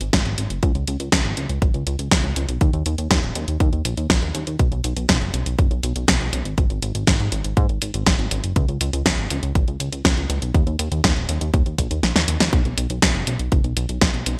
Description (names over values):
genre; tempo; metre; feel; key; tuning
italo disco; 121 BPM; 4/4; straight; unclear; A4 = 440 Hz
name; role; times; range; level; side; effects
chorused synth bass; bass; 0.0-14.4 s; D#1 to G#2; -26 LUFS; equal; tube saturation
house drum kit; drums; 0.0-14.4 s; hi-hat, snare drum; -23 LUFS; equal; small room ambience, gated reverb
electronic kick drum; drums; 0.1-14.1 s; none; -22 LUFS; equal; small room ambience
room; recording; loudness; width
little or no reverb; bright 1980s-style digital production; -21 LUFS; mono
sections
0.0-14.4 A section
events
kick drops out 12.0-12.5; drum fill 12.0-12.5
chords
none